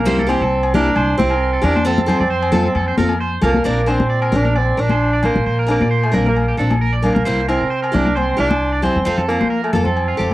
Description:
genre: highlife guitar band.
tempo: 133 BPM.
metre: 4/4.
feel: swing 54% on 16ths.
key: Bb major.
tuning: A4 = 440 Hz.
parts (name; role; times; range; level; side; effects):
breathy tenor saxophone; melody; 0.0-10.3 s; A3 to D4; -19 LUFS; right 2 dB; cassette tape.
electric guitar at the edge of break-up; arpeggios; 0.0-10.3 s; F4 to D5; -24 LUFS; right 3 dB; wide subtle chorus, cassette tape.
upright bass; bass; 0.0-10.3 s; Bb1 to F3; -20 LUFS; equal; none.
picked steel-string acoustic guitar; accompaniment; 0.1-10.3 s; F3 to Bb4; -22 LUFS; left 2 dB; cassette tape.
congas; percussion; 0.1-10.3 s; none; -21 LUFS; left 2 dB; none.
agogo bells; percussion; 0.3-10.3 s; none; -26 LUFS; left 4 dB; none.
room: light reverb.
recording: home recording on cassette.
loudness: -14 LUFS.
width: side -16 dB against mid.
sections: 0.0-3.7 A section; 3.7-10.3 B section.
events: none.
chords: 0.1 C; 1.9 F; 3.7 Bbadd9; 7.3 C; 9.1 F.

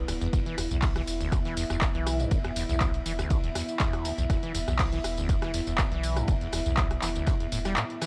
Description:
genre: acid house.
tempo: 121 BPM.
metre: 4/4.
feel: straight.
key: unclear.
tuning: A4 = 440 Hz.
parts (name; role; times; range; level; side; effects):
dark analog pad; sustained chords; 0.0-8.1 s; B3 to E5; -37 LUFS; equal; chorus, sidechain pumping.
warm sub bass; bass; 0.0-7.8 s; D1 to B1; -35 LUFS; equal; sidechain pumping.
acid bass, saw; riff; 0.1-8.1 s; D2 to G3; -36 LUFS; equal; overdrive, lush chorus, sidechain pumping, tape echo.
cloth-damped thuddy drum kit; drums; 0.1-8.1 s; hi-hat, ride cymbal, snare drum; -46 LUFS; equal; high-pass filter on cymbals, high-pass filter on hats, high-pass filter on snare, high-pass filter on room.
punchy analog drum machine; drums; 0.1-8.1 s; handclaps, hi-hat, rim click, tambourine; -35 LUFS; equal; none.
electronic kick drum; drums; 0.3-7.4 s; none; -30 LUFS; equal; none.
room: little or no reverb.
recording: dry, gritty hardware recording, cassette tape.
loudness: -28 LUFS.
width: mono.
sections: 0.0-8.1 A section.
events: none.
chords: 0.0 E5.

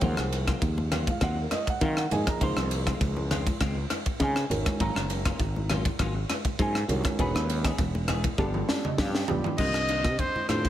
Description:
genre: electric jazz fusion.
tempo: 100 BPM.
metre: 4/4.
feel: straight.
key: Eb dorian.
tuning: A4 = 440 Hz.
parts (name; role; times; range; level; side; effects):
dark concert grand piano; accompaniment; 0.0-10.7 s; D3 to C6; -32 LUFS; right 2 dB; none.
clean electric guitar; stabs; 0.0-10.7 s; Eb3 to G#4; -36 LUFS; left 4 dB; ensemble chorus.
fretless electric bass; bass; 0.0-10.7 s; E1 to Eb3; -29 LUFS; equal; none.
crisp fusion drum kit; drums; 0.0-10.7 s; crash cymbal, kick drum, ride cymbal, rim click, snare drum, toms; -29 LUFS; equal; none.
congas; percussion; 0.8-10.6 s; none; -37 LUFS; left 1 dB; none.
clear trumpet; melody; 9.6-10.7 s; C5 to Eb5; -28 LUFS; equal; none.
room: light reverb, small room ambience.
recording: none.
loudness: -25 LUFS.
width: side -12 dB against mid.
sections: 0.0-9.6 A section; 9.6-10.7 B section.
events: drum fill 8.4-9.6; grand piano fill 8.4-9.6.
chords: 0.0 Ebm69; 2.4 Dbmaj9; 4.5 Ab13sus4; 7.2 Emaj7; 8.4 G7; 9.6 Cm11.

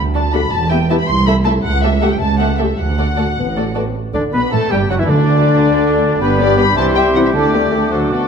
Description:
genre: quick classical-period movement for symphony orchestra.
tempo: 106 BPM (dotted quarters).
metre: 6/8.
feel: straight.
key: unclear.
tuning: A4 = 440 Hz.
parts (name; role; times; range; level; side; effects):
muted studio violin section; melody; 0.0-8.3 s; A4 to C6; -20 LUFS; left 3 dB; none.
muted studio cello section; bass; 0.0-8.2 s; C2 to B2; -21 LUFS; right 4 dB; none.
muted studio double bass section; bass; 0.0-8.3 s; E1 to D2; -20 LUFS; right 3 dB; none.
muted studio violin section; second line; 0.1-8.3 s; D4 to E5; -22 LUFS; left 1 dB; none.
muted studio viola section; accompaniment; 0.1-8.3 s; D3 to G4; -22 LUFS; equal; none.
mellow French horn section; sustained chords; 0.3-7.8 s; D3 to A4; -21 LUFS; left 4 dB; none.
bright concert flute; second line; 4.1-8.3 s; D5 to D6; -23 LUFS; left 2 dB; none.
dark clarinet; second line; 4.1-8.3 s; D4 to B4; -25 LUFS; left 1 dB; none.
warm oboe; second line; 4.1-8.3 s; D4 to B4; -23 LUFS; equal; none.
mellow bassoon; accompaniment; 4.1-8.3 s; D3 to B3; -21 LUFS; equal; none.
timpani; percussion; 5.1-5.6 s; D3; -20 LUFS; equal; none.
room: wet recital hall reverb, RT60 1.8 s.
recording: none.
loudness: -12 LUFS.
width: side -6 dB against mid.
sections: 0.0-4.0 A section; 4.0-8.3 B section.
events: none.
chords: 0.0 D; 0.5 Em; 1.1 Am/C; 1.6 A7/C#; 2.8 D; 4.0 Bm; 4.5 A5; 5.1 N.C.; 6.2 G; 6.8 C; 7.3 Dsus4.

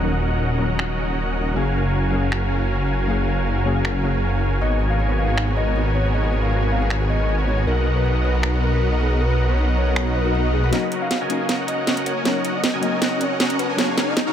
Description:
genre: future bass.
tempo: 157 BPM.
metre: 4/4.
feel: half-time.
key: unclear.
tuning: A4 = 440 Hz.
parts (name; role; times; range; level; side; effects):
soft round pluck; accompaniment; 0.0-4.6, 10.7-14.3 s; F#3 to E#5; -29 LUFS; left 5 dB; chorus, ping-pong delay.
Celtic harp; arpeggios; 0.0-0.8, 4.6-13.0 s; D#4 to F#5; -33 LUFS; left 8 dB; ping-pong delay.
dense compressed supersaw; riff; 0.0-14.3 s; B3 to A#5; -24 LUFS; right 1 dB; low-pass filter.
wide detuned saw bass; bass; 0.0-10.7 s; D#1 to B1; -20 LUFS; equal; chorus.
sub drop, swell and riser; sound effects; 0.0, 10.1-14.3 s; none; -29 LUFS; equal; none.
trap drum kit; drums; 0.8-14.2 s; finger snaps, hi-hat, snare drum; -26 LUFS; right 2 dB; low-pass filter on hats, low-pass filter on cymbals, low-pass filter on snare, low-pass filter on toms.
soft octave-layered synth lead; melody; 4.6-14.3 s; G#4 to E#5; -28 LUFS; left 1 dB; chorus, dub echo.
room: light reverb.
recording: high-pass filter.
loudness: -18 LUFS.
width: side -9 dB against mid.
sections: 0.0-10.7 A section; 10.7-14.3 B section.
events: swell 10.1-10.7; build-up 10.7-14.3; drum fill 10.7-14.3; riser 10.7-14.3.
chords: 0.0 D#m7; 1.6 F#maj9; 4.6 G#m11; 7.7 Bmaj7; 10.7 D#m7; 13.8 F#maj9.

